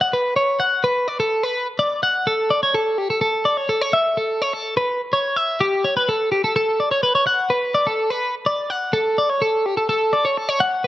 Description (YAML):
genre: rock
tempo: 252 BPM (eighths)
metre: 7/8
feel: straight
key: D major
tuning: A4 = 440 Hz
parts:
  - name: twelve-string electric guitar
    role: solo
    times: 0.0-10.9 s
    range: G4 to F#5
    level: -18 LUFS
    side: equal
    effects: spring reverb
room: light reverb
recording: none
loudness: -18 LUFS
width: side -14 dB against mid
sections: 0.6-10.9 A section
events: none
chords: none